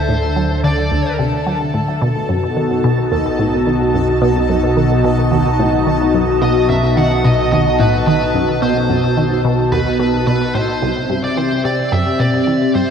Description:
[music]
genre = ambient, sequencer-driven space music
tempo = 109 BPM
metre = 4/4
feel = straight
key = unclear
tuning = A4 = 440 Hz
[part]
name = smooth overdriven lead guitar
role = melody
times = 0.0-1.2, 6.4-12.9 s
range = B4 to F#5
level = -22 LUFS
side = equal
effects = ping-pong delay
[part]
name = lush unison pad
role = sustained chords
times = 0.0-12.9 s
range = B2 to A5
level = -16 LUFS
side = equal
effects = chorus, phaser
[part]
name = analog drone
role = bass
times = 0.0-10.8 s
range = B1 to D2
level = -21 LUFS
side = equal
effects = chorus
[part]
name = bubbling stepped-filter texture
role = texture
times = 0.0-12.9 s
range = A4 to A5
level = -32 LUFS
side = left 1 dB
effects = chorus, built-in reverb
[part]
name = resonant blip pluck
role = riff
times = 0.1-12.8 s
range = C2 to F#3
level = -19 LUFS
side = equal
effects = phaser, ping-pong delay
[sound]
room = wet lush hall reverb, RT60 2.5 s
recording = dreamy mix soaked in reverb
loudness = -13 LUFS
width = side -7 dB against mid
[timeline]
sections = 0.0-10.8 A section; 10.8-12.9 B section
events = none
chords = 0.0 Dadd9; 2.0 B; 10.8 C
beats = 0.36 0.92 1.47 | 2.02 2.57 3.12 3.67 | 4.22 4.77 5.32 5.87 | 6.42 6.97 7.52 8.07 | 8.62 9.17 9.72 10.27 | 10.82 11.37 11.92 12.47

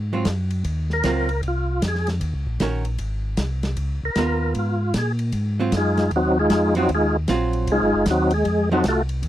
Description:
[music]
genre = soul jazz organ trio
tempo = 154 BPM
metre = 4/4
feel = swing 64% on 8ths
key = Ab mixolydian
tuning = A4 = 440 Hz
[part]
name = mellow tonewheel organ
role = bass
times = 0.0-9.3 s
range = Gb1 to Bb2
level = -24 LUFS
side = equal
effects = slow rotary speaker
[part]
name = archtop guitar, miked and amplified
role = accompaniment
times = 0.1-8.8 s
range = Eb3 to Bb4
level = -24 LUFS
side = right 4 dB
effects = none
[part]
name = warm soul drum kit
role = drums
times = 0.2-9.3 s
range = hi-hat, kick drum, ride cymbal, snare drum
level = -28 LUFS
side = equal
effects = none
[part]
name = percussive tonewheel organ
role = melody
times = 0.9-9.0 s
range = Gb3 to Bb4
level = -20 LUFS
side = equal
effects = slow rotary speaker, overdrive, chorus vibrato
[sound]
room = little or no reverb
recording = dry, close 1970s-style studio recording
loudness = -19 LUFS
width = side -13 dB against mid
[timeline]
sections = 0.0-9.3 A section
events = tonewheel organ solo 0.0-9.3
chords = 0.0 Ab13; 2.2 Ebm7; 3.0 Ab; 3.8 Db13; 5.3 Ab13; 8.5 F7b9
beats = 0.26 | 0.65 1.04 1.44 1.83 | 2.22 2.61 3.00 3.39 | 3.78 4.17 4.56 4.95 | 5.34 5.73 6.12 6.51 | 6.90 7.29 7.68 8.07 | 8.46 8.85 9.24

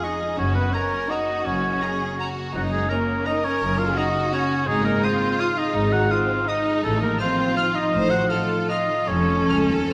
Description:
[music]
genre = classical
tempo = 141-181 BPM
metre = 3/4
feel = rubato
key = unclear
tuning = A4 = 440 Hz
[part]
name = rich chamber violin section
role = melody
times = 0.0-9.9 s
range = A#5 to F6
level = -39 LUFS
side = equal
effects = none
[part]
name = rich chamber violin section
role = second line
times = 0.0-9.9 s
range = C4 to C5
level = -30 LUFS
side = equal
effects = none
[part]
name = warm oboe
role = second line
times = 0.0-9.9 s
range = F#4 to Gb5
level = -27 LUFS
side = equal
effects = none
[part]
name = warm chamber viola section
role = accompaniment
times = 0.0-9.9 s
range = F#3 to Gb4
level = -29 LUFS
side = equal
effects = none
[part]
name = concert harp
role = arpeggios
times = 0.0-9.9 s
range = E#2 to G#4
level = -31 LUFS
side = equal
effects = none
[part]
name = rich studio double bass section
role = bass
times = 0.4-9.4 s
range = F1 to A1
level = -34 LUFS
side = equal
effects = none
[part]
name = warm chamber cello section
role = bass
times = 0.4-9.9 s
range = Db2 to A2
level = -31 LUFS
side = equal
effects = none
[sound]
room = wet concert hall reverb, RT60 2.0 s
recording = none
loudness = -22 LUFS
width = mono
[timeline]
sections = 0.0-9.9 A section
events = none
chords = 0.4 F#; 4.7 Ab; 6.8 F7/A; 9.1 F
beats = 0.04 | 0.39 0.74 1.11 | 1.46 1.82 2.19 | 2.54 2.90 3.27 | 3.62 3.97 4.33 | 4.68 5.04 5.40 | 5.75 6.11 6.49 | 6.84 7.19 7.57 | 7.93 8.30 8.69 | 9.08 9.48 9.90

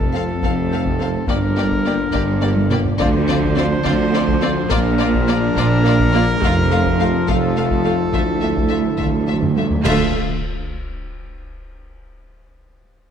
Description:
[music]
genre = cinematic, epic orchestral film score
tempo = 70 BPM (dotted quarters)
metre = 6/8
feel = straight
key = D minor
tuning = A4 = 441 Hz
[part]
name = mellow French horn section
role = sustained chords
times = 0.0-10.1 s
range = D3 to F4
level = -23 LUFS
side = left 5 dB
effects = none
[part]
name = clear trumpet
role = stabs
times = 0.0-10.1 s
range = A4 to C5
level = -25 LUFS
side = right 1 dB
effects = none
[part]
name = mellow tuba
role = bass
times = 0.0-10.1 s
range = F1 to D2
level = -23 LUFS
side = right 3 dB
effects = none
[part]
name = rich symphonic cello section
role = bass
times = 0.0-10.2 s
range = D2 to D3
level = -23 LUFS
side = right 2 dB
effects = none
[part]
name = rich symphonic double bass section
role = bass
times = 0.0-10.2 s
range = F1 to D2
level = -24 LUFS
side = right 3 dB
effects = none
[part]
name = taiko ensemble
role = drums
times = 0.0-10.0 s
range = none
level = -25 LUFS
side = left 1 dB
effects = none
[part]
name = warm symphonic violin section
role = melody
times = 0.1-10.2 s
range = D5 to F5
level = -28 LUFS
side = left 6 dB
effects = none
[part]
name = warm symphonic violin section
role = second line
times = 0.1-10.2 s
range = F4 to A4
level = -30 LUFS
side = left 3 dB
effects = none
[part]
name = warm symphonic viola section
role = accompaniment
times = 0.1-10.2 s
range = A3 to C4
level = -27 LUFS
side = equal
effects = none
[part]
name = timpani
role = percussion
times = 3.0-3.8, 8.1-10.1 s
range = D3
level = -25 LUFS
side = right 2 dB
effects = none
[part]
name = clash cymbals and concert bass drum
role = percussion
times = 9.9-11.0 s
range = none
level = -31 LUFS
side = left 1 dB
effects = none
[sound]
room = moderate scoring stage reverb, RT60 1.6 s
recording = none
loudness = -15 LUFS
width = side -8 dB against mid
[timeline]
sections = 0.0-9.9 A section; 9.9-11.6 B section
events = drum fill 2.6-3.0, 9.4-9.9; timpani fill 8.1-9.9; band accent 9.9-10.4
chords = 0.0 F; 1.3 Gm; 3.0 Dm7; 4.7 Bb; 6.4 F; 8.1 Dmadd9; 9.9 Dm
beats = 0.43 | 1.29 2.15 | 3.00 3.86 | 4.72 5.57 | 6.43 7.28 | 8.14 9.00 | 9.85 10.71

